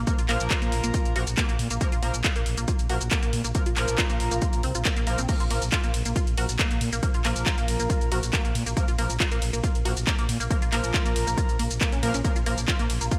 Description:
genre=driving peak-time techno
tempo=138 BPM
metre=4/4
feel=straight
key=unclear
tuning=A4 = 439 Hz
part: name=resonant blip pluck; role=riff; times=0.0-13.2 s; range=Bb3 to Gb4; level=-35 LUFS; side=equal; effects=phaser, sidechain pumping, delay
part: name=growling FM bass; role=bass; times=0.0-13.1 s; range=Bb1 to Bb2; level=-32 LUFS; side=equal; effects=sidechain pumping
part: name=sync-sweep polysynth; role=stabs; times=0.1-12.6 s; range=F3 to Bb4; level=-35 LUFS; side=equal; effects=chorus, sidechain pumping, delay
part: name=electronic kick drum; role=drums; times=0.1-13.2 s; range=none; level=-28 LUFS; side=equal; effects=overdrive
part: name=punchy analog drum machine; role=drums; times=0.1-13.2 s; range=crash cymbal, handclaps, hi-hat, ride cymbal, shaker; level=-32 LUFS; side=equal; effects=gated reverb
room=light reverb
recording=bright 1980s-style digital production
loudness=-25 LUFS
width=mono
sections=0.0-13.2 A section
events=none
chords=0.0 Bb5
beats=| 0.07 0.51 0.94 1.38 | 1.81 2.25 2.68 3.12 | 3.55 3.98 4.42 4.85 | 5.29 5.72 6.16 6.59 | 7.03 7.46 7.90 8.33 | 8.77 9.20 9.64 10.07 | 10.51 10.94 11.38 11.81 | 12.24 12.68 13.12

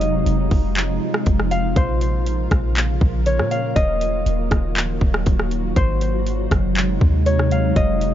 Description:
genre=hip hop, atmospheric cloud-rap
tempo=120 BPM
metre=4/4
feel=half-time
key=unclear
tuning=A4 = 439 Hz
part: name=concert harp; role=melody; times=0.0-8.1 s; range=C5 to F5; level=-25 LUFS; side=left 1 dB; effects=low-pass filter, tape echo
part: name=ethereal airy pad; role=sustained chords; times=0.0-8.1 s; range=C3 to Bb4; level=-23 LUFS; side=equal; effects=ensemble chorus, built-in reverb, sidechain pumping
part: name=clean 808-style bass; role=bass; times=0.0-8.1 s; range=Eb1 to Bb2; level=-21 LUFS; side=equal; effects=none
part: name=trap drum kit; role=drums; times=0.0-8.1 s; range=handclaps, hi-hat, kick drum, rim click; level=-20 LUFS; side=equal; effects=none
room=little or no reverb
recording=nothing above 7.5 kHz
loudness=-17 LUFS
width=side -11 dB against mid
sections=0.0-8.1 A section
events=none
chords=0.0 Fm7; 1.8 Bbm; 3.8 Ebmadd9; 5.8 Ab7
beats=0.26 0.76 1.26 | 1.76 2.26 2.76 3.26 | 3.76 4.26 4.76 5.26 | 5.76 6.26 6.76 7.26 | 7.76

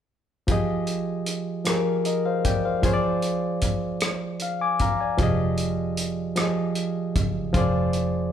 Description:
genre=slow six-eight R&B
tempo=51 BPM (dotted quarters)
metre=6/8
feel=straight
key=F dorian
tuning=A4 = 439 Hz
part: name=barky reed electric piano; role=accompaniment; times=0.5-8.3 s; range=F3 to D6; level=-24 LUFS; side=equal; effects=overdrive
part: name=warm soul drum kit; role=drums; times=0.5-8.1 s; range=hi-hat, kick drum, rim click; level=-26 LUFS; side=equal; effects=none
part: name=vintage muted fingered electric bass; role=bass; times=5.2-8.3 s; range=F1 to Gb1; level=-28 LUFS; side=equal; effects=none
room=moderate large studio reverb, RT60 1.2 s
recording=band playing live in one room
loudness=-22 LUFS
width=side -9 dB against mid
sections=0.5-8.3 A section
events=reed electric piano fill 4.0-5.2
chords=0.5 Fm7; 2.8 Fm6; 5.2 Fm7; 7.5 Bb7/F (rootless)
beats=| 0.48 1.66 | 2.83 4.01 | 5.19 6.36 | 7.54

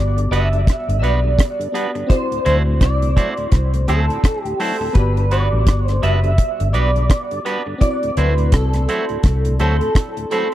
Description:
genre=lovers rock reggae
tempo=84 BPM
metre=4/4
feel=swing 59% on 16ths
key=G major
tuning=A4 = 438 Hz
part: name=electric guitar through a small old amp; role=melody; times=0.0-10.5 s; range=A4 to E5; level=-22 LUFS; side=right 1 dB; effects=ensemble chorus, tape echo
part: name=FM electric piano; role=accompaniment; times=0.0-10.5 s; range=B3 to D5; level=-28 LUFS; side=left 2 dB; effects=chorus
part: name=vintage muted fingered electric bass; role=bass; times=0.0-9.8 s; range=F#1 to D2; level=-17 LUFS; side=equal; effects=none
part: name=overdriven tonewheel organ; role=accompaniment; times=0.2-10.4 s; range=D2 to F#4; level=-30 LUFS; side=left 3 dB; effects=slow rotary speaker, tape echo
part: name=deep reggae drum kit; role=drums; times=0.2-10.5 s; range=hi-hat, kick drum, rim click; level=-15 LUFS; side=equal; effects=none
part: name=clean electric guitar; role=stabs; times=0.3-10.5 s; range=A3 to C5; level=-26 LUFS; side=right 4 dB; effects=spring reverb
room=little or no reverb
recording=dry, close 1970s-style studio recording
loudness=-15 LUFS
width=side -13 dB against mid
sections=0.0-10.5 A section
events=none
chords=0.0 Gmaj7; 2.1 D9; 5.0 Gmaj7; 7.8 D9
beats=0.68 1.39 | 2.10 2.82 3.53 4.25 | 4.96 5.67 6.39 7.10 | 7.81 8.53 9.24 9.96

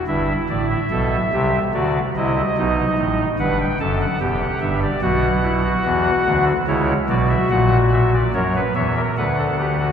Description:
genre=classical, baroque-style 3-part fugue for pipe organ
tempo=72 BPM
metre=3/4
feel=straight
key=E minor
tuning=A4 = 440 Hz
part: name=pipe organ, soft reed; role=solo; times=0.0-9.9 s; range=E1 to A5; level=-17 LUFS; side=equal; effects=none
room=wet church reverb, RT60 3.8 s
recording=heard from further back in the room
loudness=-17 LUFS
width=side -8 dB against mid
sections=0.1-9.9 A section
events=none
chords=0.1 Em/G; 1.7 D; 2.6 B7; 4.2 Em; 5.0 Bm; 6.7 Bsus24; 7.5 F#7/A#; 9.2 Bm/D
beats=| 0.08 0.91 1.74 | 2.57 3.40 4.22 | 5.04 5.86 6.69 | 7.52 8.35 9.19

